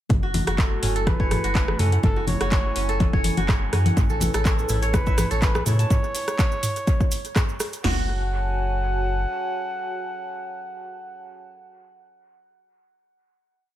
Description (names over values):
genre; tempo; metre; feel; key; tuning
afro house; 124 BPM; 4/4; swing 54% on 16ths; F# minor; A4 = 440 Hz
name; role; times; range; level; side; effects
dark analog pad; sustained chords; 0.1-11.4 s; A3 to A5; -34 LUFS; right 2 dB; chorus, sidechain pumping
warm sub bass; bass; 0.1-9.3 s; F#1 to A2; -25 LUFS; equal; sidechain pumping
afro-pop drum kit; drums; 0.1-7.8 s; handclaps, hi-hat, rim click, toms; -28 LUFS; right 1 dB; dub echo
deep house drum kit; drums; 0.1-8.0 s; crash cymbal, kick drum, snare drum, toms; -22 LUFS; equal; overdrive
congas; percussion; 0.1-5.8 s; none; -29 LUFS; left 3 dB; dub echo
kora; arpeggios; 0.2-9.3 s; C#4 to A5; -30 LUFS; right 1 dB; sidechain pumping, analog delay
trumpet with bucket mute; melody; 0.6-11.4 s; A4 to F#5; -31 LUFS; equal; analog delay
cabasa; percussion; 4.0-7.8 s; none; -35 LUFS; right 8 dB; none
room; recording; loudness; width
light reverb, digital ambience; echo-heavy mix; -20 LUFS; side -13 dB against mid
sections
0.1-7.8 drop; 7.8-11.7 final chord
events
drop 0.1-7.8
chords
0.1 F#m7; 4.0 Amaj7; 7.8 F#m